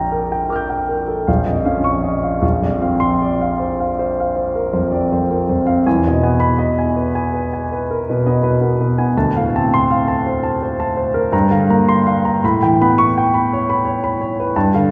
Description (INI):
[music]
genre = classical, impressionist solo piano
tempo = 54 BPM (dotted quarters)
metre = 9/8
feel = uneven beats, rubato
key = unclear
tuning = A4 = 440 Hz
[part]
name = warm grand piano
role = solo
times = 0.0-14.9 s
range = Bb1 to G6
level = -17 LUFS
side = equal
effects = none
[sound]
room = wet concert hall reverb, RT60 2.4 s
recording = heard from further back in the room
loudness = -17 LUFS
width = mono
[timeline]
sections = 0.0-14.9 A section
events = none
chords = 0.0 Bb6; 1.3 Dbadd9/Bb; 2.4 Dm7/Bb; 5.9 Emaj7; 9.2 Dm7; 11.3 Gm7; 12.4 A9